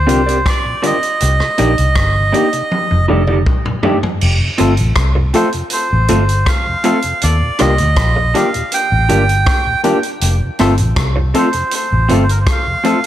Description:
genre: lovers rock reggae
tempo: 80 BPM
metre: 4/4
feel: straight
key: unclear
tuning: A4 = 440 Hz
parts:
  - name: melodica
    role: melody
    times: 0.0-13.1 s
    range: Bb4 to G5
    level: -18 LUFS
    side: right 2 dB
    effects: tape echo
  - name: vintage muted fingered electric bass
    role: bass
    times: 0.0-12.5 s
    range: F1 to Eb2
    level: -14 LUFS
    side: equal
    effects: none
  - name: mellow tonewheel organ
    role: accompaniment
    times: 0.1-13.0 s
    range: Eb2 to D4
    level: -25 LUFS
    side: right 1 dB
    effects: chorus vibrato
  - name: tine electric piano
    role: accompaniment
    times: 0.1-13.0 s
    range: A3 to A4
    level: -20 LUFS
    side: left 5 dB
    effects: dub echo
  - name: electric guitar through a small old amp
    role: stabs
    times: 0.1-13.0 s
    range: Bb3 to D5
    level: -20 LUFS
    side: right 3 dB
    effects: none
  - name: vintage drum kit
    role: drums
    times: 0.1-13.1 s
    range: crash cymbal, hi-hat, kick drum, rim click, toms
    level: -19 LUFS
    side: equal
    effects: gated reverb
room: light reverb, studio reverb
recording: none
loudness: -12 LUFS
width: side -12 dB against mid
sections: 0.0-4.2 A section; 4.2-13.1 B section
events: drum fill 2.7-4.2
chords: 0.0 Bb69; 1.2 Cm9; 2.7 F13; 4.2 F; 7.2 Ebmaj7; 10.2 F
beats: 0.45 | 1.20 1.96 2.71 3.46 | 4.21 4.96 5.71 6.47 | 7.22 7.97 8.72 9.47 | 10.22 10.97 11.72 12.47

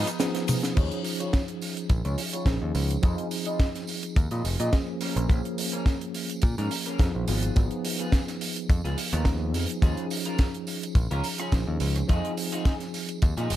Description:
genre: nu-disco, nu disco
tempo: 106 BPM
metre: 4/4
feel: swing 54% on 16ths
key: unclear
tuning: A4 = 440 Hz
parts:
  - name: tine electric piano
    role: accompaniment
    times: 0.0-13.6 s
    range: F3 to Ab4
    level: -32 LUFS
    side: equal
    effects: overdrive, medium stereo tremolo, sidechain pumping, low-pass filter, slapback echo
  - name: lush unison pad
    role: sustained chords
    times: 0.0-0.7 s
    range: Cb5 to Eb6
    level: -45 LUFS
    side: left 2 dB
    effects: none
  - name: clean electric guitar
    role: riff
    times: 0.0-13.5 s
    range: Cb4 to Eb5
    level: -35 LUFS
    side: equal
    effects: analog chorus, low-pass filter
  - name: picked electric bass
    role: bass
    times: 0.0-13.6 s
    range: F1 to Bb2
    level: -27 LUFS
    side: equal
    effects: none
  - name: tight funk drum kit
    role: drums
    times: 0.1-13.6 s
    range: crash cymbal, hi-hat, ride cymbal, rim click, shaker, snare drum, toms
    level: -32 LUFS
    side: right 2 dB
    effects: none
  - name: tambourine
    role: percussion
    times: 0.1-13.6 s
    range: none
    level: -41 LUFS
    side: right 4 dB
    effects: none
  - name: kick drum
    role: drums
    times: 0.8-13.3 s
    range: none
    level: -22 LUFS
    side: equal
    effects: none
room: studio reverb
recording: none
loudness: -24 LUFS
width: side -13 dB against mid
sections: 0.8-13.6 A section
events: drum fill 0.3-0.8; filter sweep on clean electric guitar 0.8-13.6; filter sweep on tine electric piano 0.8-13.6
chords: 0.0 Abm6; 0.8 Eb9sus4; 3.0 Fm7; 5.0 Bbm7; 7.3 Abm6; 9.8 Eb9sus4; 12.1 Fm7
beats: 0.20 | 0.77 1.33 1.90 2.47 | 3.03 3.60 4.17 4.73 | 5.30 5.86 6.43 7.00 | 7.56 8.13 8.69 9.26 | 9.82 10.39 10.96 11.52 | 12.09 12.65 13.22

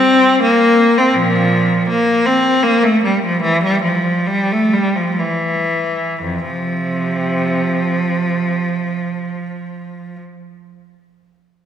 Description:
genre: classical, baroque-style suite movement for unaccompanied cello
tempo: 57-85 BPM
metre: 3/4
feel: rubato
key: F major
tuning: A4 = 440 Hz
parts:
  - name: clear cello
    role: solo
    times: 0.0-10.2 s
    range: F2 to C4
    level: -14 LUFS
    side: equal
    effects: none
room: wet concert hall reverb, RT60 2.5 s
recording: none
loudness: -13 LUFS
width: side -9 dB against mid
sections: 0.0-6.2 A section; 6.2-11.7 B section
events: slowing down 0.1-6.2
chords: none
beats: 0.42 | 1.15 1.89 2.65 | 3.44 4.28 5.19 | 6.21 7.26 8.31 | 9.35

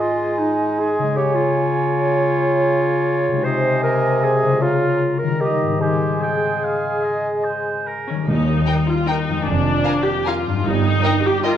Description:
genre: classical, orchestral ballroom waltz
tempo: 138-169 BPM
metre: 3/4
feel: rubato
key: Ab major, Eb major from 8.3 s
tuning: A4 = 441 Hz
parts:
  - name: clear clarinet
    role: second line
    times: 0.0-8.1 s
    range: Eb4 to C5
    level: -21 LUFS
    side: equal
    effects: none
  - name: mellow concert flute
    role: second line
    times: 0.0-8.1 s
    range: Ab5 to Bb5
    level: -27 LUFS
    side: right 2 dB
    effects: none
  - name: warm oboe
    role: second line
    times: 0.0-8.3 s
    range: Bb4 to G5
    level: -27 LUFS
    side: right 2 dB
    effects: none
  - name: warm bassoon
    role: accompaniment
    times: 0.0-8.1 s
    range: C3 to Ab3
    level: -22 LUFS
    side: right 2 dB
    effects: none
  - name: concert harp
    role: arpeggios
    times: 0.0-11.6 s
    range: F2 to C5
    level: -24 LUFS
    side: left 6 dB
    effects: none
  - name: rich chamber viola section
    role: accompaniment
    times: 8.1-11.6 s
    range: Db4 to G4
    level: -21 LUFS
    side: left 1 dB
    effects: none
  - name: clear chamber double bass section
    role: bass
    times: 8.3-11.0 s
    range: F1 to Eb2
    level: -25 LUFS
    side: right 4 dB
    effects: none
  - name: warm chamber cello section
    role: bass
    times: 8.3-11.0 s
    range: Eb2 to G2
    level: -23 LUFS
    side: right 5 dB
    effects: none
  - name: timpani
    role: percussion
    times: 8.3-8.8 s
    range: Eb3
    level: -24 LUFS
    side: left 1 dB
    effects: none
  - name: rich chamber violin section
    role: melody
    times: 8.7-11.5 s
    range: G5 to Ab5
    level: -30 LUFS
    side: left 3 dB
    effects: none
  - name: rich symphonic violin section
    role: second line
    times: 8.7-11.5 s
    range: Bb4 to G5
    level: -26 LUFS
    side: left 1 dB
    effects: none
room: wet recital hall reverb, RT60 1.6 s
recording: worn, warbling old tape, cassette tape, warbly pitch drift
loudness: -16 LUFS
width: side -10 dB against mid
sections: 0.0-8.3 A section; 8.3-11.6 B section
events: none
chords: 0.0 Ab5; 1.2 Db; 3.5 Ab/C; 4.6 Bbm7/Db; 5.4 Eb; 5.8 Ab; 8.3 Eb; 9.5 Bb7/F; 10.6 Eb/G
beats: | 0.01 0.40 0.80 | 1.17 1.54 1.94 | 2.31 2.69 3.08 | 3.46 3.83 4.24 | 4.62 5.00 5.41 | 5.81 6.22 6.65 | 7.04 7.45 7.88 | 8.27 8.67 9.08 | 9.46 9.85 10.26 | 10.65 11.04 11.44

